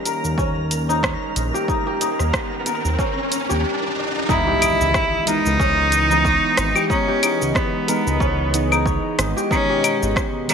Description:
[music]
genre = organic downtempo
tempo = 92 BPM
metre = 4/4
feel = swing 56% on 16ths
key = unclear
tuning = A4 = 441 Hz
[part]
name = warm analog pad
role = sustained chords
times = 0.0-10.5 s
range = Cb3 to Eb5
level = -30 LUFS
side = left 1 dB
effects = chorus, sidechain pumping
[part]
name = kora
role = arpeggios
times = 0.0-10.5 s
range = Db4 to Eb5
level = -24 LUFS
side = left 2 dB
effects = digital delay
[part]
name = riser and impact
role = sound effects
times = 0.9-6.9 s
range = none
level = -28 LUFS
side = right 1 dB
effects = none
[part]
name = twinkling granular texture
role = texture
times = 0.0-3.6 s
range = Bb4 to Bb5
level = -32 LUFS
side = right 3 dB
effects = built-in reverb
[part]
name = deep house drum kit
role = drums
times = 0.1-10.5 s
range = claves, hi-hat, rim click, shaker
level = -23 LUFS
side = left 1 dB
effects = overdrive
[part]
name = smooth synth bass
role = bass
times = 0.2-10.1 s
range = Ab1 to Eb2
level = -22 LUFS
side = equal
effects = none
[part]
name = electronic kick drum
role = drums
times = 0.4-10.3 s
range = none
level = -24 LUFS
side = equal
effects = overdrive
[part]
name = clear cello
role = melody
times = 4.3-10.5 s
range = Cb4 to Fb4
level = -20 LUFS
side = equal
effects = digital delay
[part]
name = muted felt-like synth keys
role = accompaniment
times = 4.3-10.5 s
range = Eb3 to Eb5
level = -27 LUFS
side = right 3 dB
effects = chorus, phaser, sidechain pumping, digital delay
[sound]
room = moderate lush hall reverb, RT60 1.6 s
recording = none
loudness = -17 LUFS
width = side -6 dB against mid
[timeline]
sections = 0.0-4.3 A section; 4.3-10.5 B section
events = riser 0.9-4.3; impact 4.3-6.9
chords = 0.0 Eb7; 4.3 Dbm7; 9.5 Abm

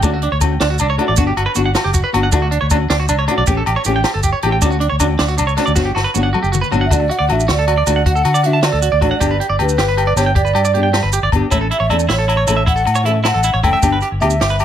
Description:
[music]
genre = highlife guitar band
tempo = 104 BPM (dotted quarters)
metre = 12/8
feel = straight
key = D major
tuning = A4 = 440 Hz
[part]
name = flamenco guitar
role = accompaniment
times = 0.0-14.3 s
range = E3 to A4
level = -22 LUFS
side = left 4 dB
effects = plate reverb
[part]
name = clean electric guitar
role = arpeggios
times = 0.0-14.6 s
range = D4 to A5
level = -19 LUFS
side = right 4 dB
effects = plate reverb, tape echo
[part]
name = fingered electric bass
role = bass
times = 0.0-14.6 s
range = F#1 to D3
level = -18 LUFS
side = equal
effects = none
[part]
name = compact cocktail drum kit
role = drums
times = 0.0-14.6 s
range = hi-hat, kick drum, snare drum, toms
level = -20 LUFS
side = equal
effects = none
[part]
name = agogo bells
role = percussion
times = 0.0-14.6 s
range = none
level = -24 LUFS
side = left 10 dB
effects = none
[part]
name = maracas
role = percussion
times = 0.0-14.6 s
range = none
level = -24 LUFS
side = right 10 dB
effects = none
[part]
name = mellow hollow concert flute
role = melody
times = 6.9-14.6 s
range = B4 to G5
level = -18 LUFS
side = right 1 dB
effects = plate reverb
[sound]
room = light reverb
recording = none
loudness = -13 LUFS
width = side -10 dB against mid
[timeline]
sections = 0.0-6.9 A section; 6.9-14.6 B section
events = drum fill 5.8-6.9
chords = 0.0 Dmaj7; 1.2 Gmaj7; 2.3 Dmaj7; 3.5 A7; 4.6 Dmaj7; 5.8 Gmaj7; 6.9 D; 9.2 G; 11.5 A; 13.8 G

